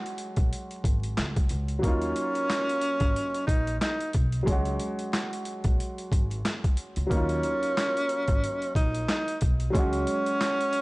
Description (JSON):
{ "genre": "hip hop, boom-bap hip-hop", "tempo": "91 BPM", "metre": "4/4", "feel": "swing 56% on 16ths", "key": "Eb minor", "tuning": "A4 = 444 Hz", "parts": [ { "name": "warm upright piano", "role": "accompaniment", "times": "0.0-10.8 s", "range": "Gb3 to Gb4", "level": "-33 LUFS", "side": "equal", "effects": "none" }, { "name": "boom bap sampler-style drum kit", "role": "drums", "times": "0.1-10.8 s", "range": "handclaps, hi-hat, kick drum, snare drum", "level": "-27 LUFS", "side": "equal", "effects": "overdrive" }, { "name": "upright bass", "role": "bass", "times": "0.4-10.0 s", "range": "Ab1 to Eb2", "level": "-31 LUFS", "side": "equal", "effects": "none" }, { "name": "mellow tenor saxophone", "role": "melody", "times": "1.9-10.8 s", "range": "Db4 to Eb4", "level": "-28 LUFS", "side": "equal", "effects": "none" } ], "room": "small room reverb", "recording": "dry, gritty hardware recording, vinyl crackle, nothing above 10.3 kHz", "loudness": "-24 LUFS", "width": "side -23 dB against mid", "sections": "0.0-1.8 A section; 1.8-10.8 B section", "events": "none", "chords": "0.0 Dbsus4; 1.8 Ebmadd9; 4.5 Dbsus4; 7.1 Ebmadd9; 9.7 Dbsus4", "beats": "0.51 1.17 | 1.83 2.49 3.15 3.81 | 4.47 5.13 5.79 6.45 | 7.11 7.77 8.43 9.09 | 9.74 10.40" }